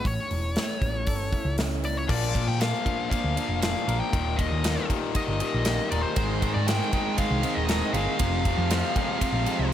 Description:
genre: quiet-loud alternative rock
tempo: 118 BPM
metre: 4/4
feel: straight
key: unclear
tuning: A4 = 441 Hz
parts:
  - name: nasal lead guitar with a parked wah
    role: melody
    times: 0.0-9.7 s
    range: C5 to G5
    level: -31 LUFS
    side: left 2 dB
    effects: overdrive
  - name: electric guitar through a small old amp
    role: arpeggios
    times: 0.0-9.7 s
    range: Eb2 to Bb4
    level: -34 LUFS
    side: right 3 dB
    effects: spring reverb, digital delay
  - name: hollow-body short-scale picked electric bass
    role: bass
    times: 0.1-9.7 s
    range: Eb1 to Bb2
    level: -28 LUFS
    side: equal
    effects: none
  - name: big rock drum kit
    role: drums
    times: 0.1-9.6 s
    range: crash cymbal, hi-hat, kick drum, ride cymbal, snare drum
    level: -29 LUFS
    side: equal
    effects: none
  - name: biting overdriven guitar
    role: riff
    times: 2.1-9.7 s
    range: Eb2 to Bb3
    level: -30 LUFS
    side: left 11 dB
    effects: none
  - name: tight distorted guitar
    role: riff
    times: 6.2-9.7 s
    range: F2 to Ab3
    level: -31 LUFS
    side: right 16 dB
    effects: distortion
room: little or no reverb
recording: none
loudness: -23 LUFS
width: side -10 dB against mid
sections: 0.0-2.1 A section; 2.1-9.7 B section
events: none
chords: 0.1 A; 2.1 Bb; 4.1 Eb; 6.2 Ab; 8.2 Fm

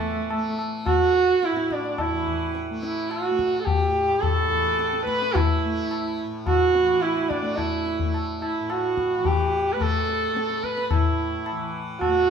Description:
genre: indian classical, Hindustani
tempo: 108 BPM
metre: 5/4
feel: straight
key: A raga kafi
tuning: A4 = 440 Hz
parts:
  - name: warm sarangi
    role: melody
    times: 0.0-12.3 s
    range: A3 to B4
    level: -22 LUFS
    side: right 3 dB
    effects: none
  - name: tanpura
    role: drone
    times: 0.0-12.3 s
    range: A2 to A3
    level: -32 LUFS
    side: left 3 dB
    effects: none
  - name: tabla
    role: percussion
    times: 0.3-12.2 s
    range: none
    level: -27 LUFS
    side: left 4 dB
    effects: none
room: moderate large studio reverb, RT60 1.1 s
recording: band playing live in one room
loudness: -21 LUFS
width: side -7 dB against mid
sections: 0.0-12.3 A section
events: none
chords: none

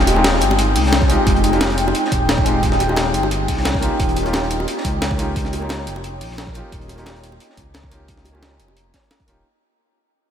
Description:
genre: liquid drum and bass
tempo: 176 BPM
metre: 4/4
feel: straight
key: unclear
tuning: A4 = 441 Hz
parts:
  - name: felt-muted upright piano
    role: accompaniment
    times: 0.0-9.4 s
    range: Ab3 to G4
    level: -23 LUFS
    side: equal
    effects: ping-pong delay
  - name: glassy FM pad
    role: sustained chords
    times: 0.0-9.4 s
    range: Ab3 to G5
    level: -23 LUFS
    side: left 1 dB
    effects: ensemble chorus, built-in reverb, sidechain pumping
  - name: smooth gliding synth bass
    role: bass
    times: 0.0-9.4 s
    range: Eb1 to Db2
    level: -23 LUFS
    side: equal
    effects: none
  - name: downlifter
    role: sound effects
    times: 0.0-1.3 s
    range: none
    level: -32 LUFS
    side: equal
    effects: none
  - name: breakbeat sampler-style drum kit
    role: drums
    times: 0.1-9.4 s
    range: hi-hat, snare drum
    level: -24 LUFS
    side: equal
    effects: none
  - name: crunchy breakbeat drum kit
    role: drums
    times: 0.1-9.4 s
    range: hi-hat, snare drum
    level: -29 LUFS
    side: equal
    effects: high-pass filter on hats, high-pass filter on snare, high-pass filter on room
  - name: bongos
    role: percussion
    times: 0.1-8.8 s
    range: none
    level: -28 LUFS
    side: right 2 dB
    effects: none
  - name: electronic kick drum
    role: drums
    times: 1.0-9.3 s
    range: none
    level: -22 LUFS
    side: equal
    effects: none
room: moderate huge ambient reverb, RT60 7.3 s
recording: dreamy mix soaked in reverb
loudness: -15 LUFS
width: side -9 dB against mid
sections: 0.0-9.4 A section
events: fade-out 0.0-9.4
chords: 0.0 Fm9; 4.0 Eb7

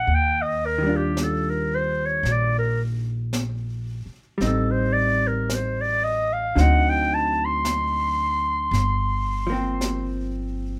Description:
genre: jazz ballad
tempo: 56 BPM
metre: 4/4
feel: swing 68% on 8ths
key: unclear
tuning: A4 = 439 Hz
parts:
  - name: growling clarinet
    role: melody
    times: 0.0-10.2 s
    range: G4 to C6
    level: -26 LUFS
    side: equal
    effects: none
  - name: vintage hollow-body jazz guitar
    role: accompaniment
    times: 0.0-10.8 s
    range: D3 to F4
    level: -30 LUFS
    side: equal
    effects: none
  - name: upright bass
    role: bass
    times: 0.0-10.8 s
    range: G1 to Eb2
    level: -28 LUFS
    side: equal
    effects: none
  - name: jazz brush drum kit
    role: drums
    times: 0.1-10.8 s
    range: brushed snare drum, hi-hat, snare drum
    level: -35 LUFS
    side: equal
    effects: none
room: light reverb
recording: none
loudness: -23 LUFS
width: mono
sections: 0.0-10.8 A section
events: clarinet solo 0.0-10.8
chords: 0.1 Ebmaj9; 4.4 Am7b5; 6.6 D7b9; 8.7 Gm7

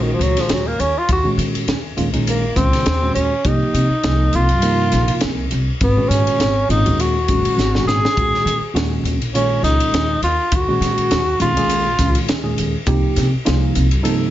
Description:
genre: electric jazz fusion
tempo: 102 BPM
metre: 4/4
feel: swing 55% on 16ths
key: unclear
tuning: A4 = 440 Hz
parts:
  - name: breathy tenor saxophone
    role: melody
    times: 0.0-12.3 s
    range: Eb3 to Ab4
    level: -19 LUFS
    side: equal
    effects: slapback echo
  - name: tine electric piano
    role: accompaniment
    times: 0.0-14.3 s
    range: Bb2 to Bb4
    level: -21 LUFS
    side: right 1 dB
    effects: lush chorus
  - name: upright bass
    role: bass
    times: 0.0-14.3 s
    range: Gb1 to Eb3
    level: -20 LUFS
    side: equal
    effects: none
  - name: crisp fusion drum kit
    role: drums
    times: 0.2-14.2 s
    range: hi-hat, kick drum, ride cymbal, snare drum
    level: -22 LUFS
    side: equal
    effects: none
room: light reverb, small room ambience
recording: nothing above 7.5 kHz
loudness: -15 LUFS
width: side -13 dB against mid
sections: 0.0-14.3 A section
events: tenor saxophone solo 0.0-14.3; drum fill 7.6-8.2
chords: 0.0 Ebm11; 3.5 Cm7; 5.8 Ab9sus4; 8.2 Ebm11; 12.9 Cm7

